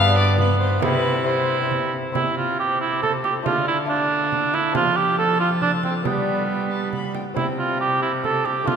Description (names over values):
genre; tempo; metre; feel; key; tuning
classical, renaissance-style consort dance; 138 BPM; 3/4; straight; C major; A4 = 440 Hz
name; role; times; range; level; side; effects
warm violin; melody; 0.0-8.8 s; B4 to B5; -28 LUFS; left 4 dB; none
warm cor anglais; second line; 0.0-8.8 s; B3 to A4; -21 LUFS; right 4 dB; none
lute; accompaniment; 0.0-8.8 s; G2 to G4; -29 LUFS; left 4 dB; none
rich cello; bass; 0.0-8.8 s; G2 to G3; -25 LUFS; equal; none
frame drum; percussion; 0.4-8.8 s; none; -30 LUFS; right 5 dB; none
room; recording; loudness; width
wet cathedral reverb, RT60 5.3 s; minimal, uncompressed stereo recording; -19 LUFS; side -7 dB against mid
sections
0.0-2.2 A section; 2.2-8.8 B section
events
none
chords
0.0 G; 0.8 C; 3.5 Dm; 4.8 F; 6.1 G; 7.4 C